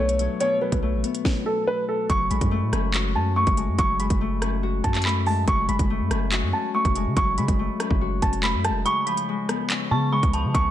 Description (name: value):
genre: hip hop, drill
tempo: 142 BPM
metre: 4/4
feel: half-time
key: F# harmonic minor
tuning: A4 = 440 Hz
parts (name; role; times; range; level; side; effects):
- dark concert grand piano; melody; 0.0-10.7 s; A4 to C#6; -25 LUFS; right 2 dB; digital delay
- Celtic harp; accompaniment; 0.0-10.7 s; B2 to F#4; -28 LUFS; left 6 dB; none
- long sustained 808-style bass; bass; 0.0-10.7 s; E#1 to C#3; -25 LUFS; right 1 dB; none
- drill drum kit; drums; 0.1-10.6 s; handclaps, hi-hat, kick drum, rim click, snare drum; -25 LUFS; equal; vintage 12-bit sampler grit
- dark detuned synth bell; second line; 8.9-10.5 s; A5 to C#6; -30 LUFS; right 3 dB; chorus, digital delay
room: light reverb, digital ambience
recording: none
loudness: -20 LUFS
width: side -12 dB against mid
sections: 0.0-2.1 A section; 2.1-10.7 B section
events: kick muted 8.9-9.7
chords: 0.0 Bm7; 2.1 F#madd9; 8.9 C#7